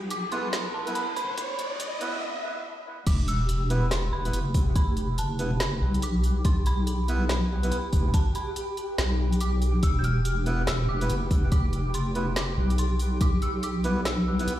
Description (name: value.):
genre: deep dubstep.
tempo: 142 BPM.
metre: 4/4.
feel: swing 61% on 16ths, half-time.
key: E phrygian.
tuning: A4 = 441 Hz.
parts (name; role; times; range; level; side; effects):
deep soft wobble bass; bass; 0.0-14.5 s; E1 to B1; -26 LUFS; equal; chorus.
riser; sound effects; 0.0-2.2 s; none; -33 LUFS; equal; none.
dark detuned synth bell; melody; 0.1-14.6 s; A5 to G6; -35 LUFS; right 1 dB; chorus, tremolo, dub echo.
deep house drum kit; drums; 0.1-14.6 s; crash cymbal, hi-hat, snare drum; -33 LUFS; equal; none.
melodica; stabs; 0.3-7.8, 10.5-14.5 s; B3 to B4; -34 LUFS; right 2 dB; dub echo.
electronic kick drum; drums; 1.2-13.3 s; none; -23 LUFS; equal; high-pass filter on kick.
flickering grainy texture; texture; 3.4-14.6 s; G4; -36 LUFS; right 1 dB; built-in reverb.
room: light reverb, digital ambience.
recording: played on a big sound system in a bare room, stone room reverb, high-pass filter.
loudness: -24 LUFS.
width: side -13 dB against mid.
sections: 0.0-3.1 A section; 3.1-14.6 B section.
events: build-up 0.0-3.1; riser 0.0-2.2; break 2.2-3.1; drop 3.1-14.6.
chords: 0.0 E5.